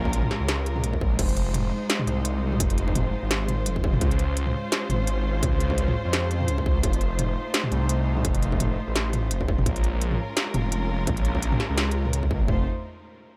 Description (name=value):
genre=half-time drum and bass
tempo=170 BPM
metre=4/4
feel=swing 56% on 16ths, half-time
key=F minor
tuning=A4 = 438 Hz
part: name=muted studio string section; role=sustained chords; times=0.0-12.7 s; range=Ab3 to C5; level=-33 LUFS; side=equal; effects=sidechain pumping
part: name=phased detuned saw bass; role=bass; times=0.0-12.6 s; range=F1 to F2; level=-28 LUFS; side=equal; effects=phaser, tube saturation
part: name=industrial drum kit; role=drums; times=0.1-12.6 s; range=kick drum, toms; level=-28 LUFS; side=equal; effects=distortion
part: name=industrial drum kit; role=drums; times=0.1-12.2 s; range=crash cymbal, hi-hat, snare drum, toms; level=-30 LUFS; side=equal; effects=none
room=digital ambience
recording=none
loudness=-25 LUFS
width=mono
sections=0.0-12.5 A section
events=drop 0.0-12.5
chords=0.0 Bbm7; 1.2 Fm7; 4.0 Dbmaj7; 6.8 F7; 9.7 Bbm7; 12.5 F7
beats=0.13 0.48 0.84 | 1.19 1.54 1.90 2.25 | 2.60 2.96 3.31 3.66 | 4.01 4.37 4.72 5.07 | 5.42 5.78 6.13 6.48 | 6.84 7.19 7.54 7.90 | 8.25 8.60 8.96 9.31 | 9.66 10.01 10.37 10.72 | 11.07 11.43 11.78 12.13 | 12.48